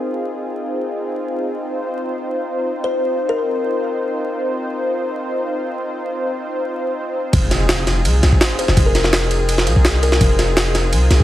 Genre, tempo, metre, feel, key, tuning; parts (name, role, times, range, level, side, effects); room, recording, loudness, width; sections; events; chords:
drum and bass, jungle; 167 BPM; 4/4; straight; F minor; A4 = 435 Hz
lush unison pad; sustained chords; 0.0-11.2 s; C4 to C5; -22 LUFS; equal; chorus
kalimba; melody; 2.8-3.6, 8.6-10.5 s; Bb4 to C5; -24 LUFS; left 4 dB; vintage 12-bit sampler grit, dub echo
long sustained 808-style bass; bass; 7.3-11.2 s; F1 to C2; -17 LUFS; equal
jungle sampler-style drum kit; drums; 7.3-11.2 s; kick drum, ride cymbal, snare drum; -16 LUFS; equal
impact; sound effects; 7.3-8.8 s; -27 LUFS; equal
light reverb, digital ambience; vinyl crackle; -16 LUFS; side -14 dB against mid
0.0-7.3 A section; 7.3-11.2 B section
filter sweep on analog synth pad 0.0-7.3; drop 7.3-11.2; impact 7.3-8.8
0.0 Fm7